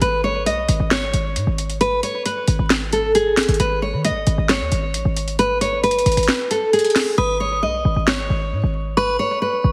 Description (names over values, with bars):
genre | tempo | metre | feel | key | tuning
hip hop, trap | 134 BPM | 4/4 | half-time | G# phrygian | A4 = 440 Hz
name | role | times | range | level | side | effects
nylon-string guitar | melody | 0.0-9.7 s | G#4 to D#5 | -22 LUFS | equal | tape echo
short 808-style bass | bass | 0.0-9.7 s | G#1 to D#3 | -24 LUFS | equal | none
trap drum kit | drums | 0.0-8.2 s | hi-hat, snare drum | -24 LUFS | equal | none
metallic FM bell | second line | 7.2-9.7 s | C#6 to D#6 | -28 LUFS | equal | chorus, tape echo
room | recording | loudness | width
moderate lush hall reverb, RT60 1.9 s | heavily compressed radio sound, multiband compression, vinyl crackle | -19 LUFS | mono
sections
0.0-9.7 A section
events
kick muted 6.3-7.2; hi-hats muted 7.2-9.7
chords
0.0 G#m